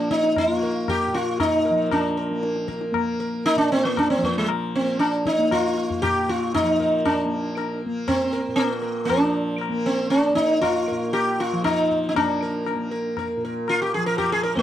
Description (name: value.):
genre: indian classical, Hindustani.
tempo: 117 BPM.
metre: 5/4.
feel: straight.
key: Bb raga khamaj.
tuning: A4 = 440 Hz.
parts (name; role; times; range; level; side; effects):
sitar; melody; 0.0-14.6 s; Ab3 to Bb4; -21 LUFS; right 1 dB; none.
tanpura; drone; 0.0-14.6 s; Bb2 to Bb3; -29 LUFS; left 1 dB; none.
tabla; percussion; 0.1-14.6 s; none; -30 LUFS; left 8 dB; none.
room: moderate booth ambience, RT60 0.1 s.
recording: dry, close 1970s-style studio recording.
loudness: -20 LUFS.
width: side -11 dB against mid.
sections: 0.0-14.6 A section.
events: none.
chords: none.